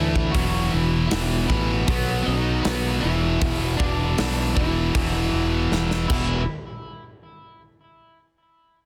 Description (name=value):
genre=quiet-loud alternative rock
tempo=78 BPM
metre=4/4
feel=straight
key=unclear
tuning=A4 = 438 Hz
part: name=electric guitar at the edge of break-up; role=melody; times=0.0-6.4 s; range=E3 to D#5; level=-31 LUFS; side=equal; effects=tape echo
part: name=distorted electric guitar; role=riff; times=0.0-6.4 s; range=E2 to B3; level=-31 LUFS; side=equal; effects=overdrive
part: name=heavy high-gain guitar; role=riff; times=0.0-6.4 s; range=E2 to B3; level=-33 LUFS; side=equal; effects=distortion
part: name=high-gain distorted guitar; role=riff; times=0.0-6.4 s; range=E2 to B3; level=-32 LUFS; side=equal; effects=distortion
part: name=fingered electric bass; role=bass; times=0.0-6.5 s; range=E1 to D2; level=-27 LUFS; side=equal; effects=none
part: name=big rock drum kit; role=drums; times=0.2-6.3 s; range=crash cymbal, hi-hat, kick drum, snare drum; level=-29 LUFS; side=equal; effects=none
room=little or no reverb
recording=dense, heavily limited modern master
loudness=-22 LUFS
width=mono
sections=0.0-6.5 A section; 6.5-8.9 B section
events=drum fill 5.7-6.5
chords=0.4 E5; 1.9 B; 3.0 E5; 6.5 N.C.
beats=| 0.35 1.12 1.88 2.65 | 3.41 4.18 4.95 5.71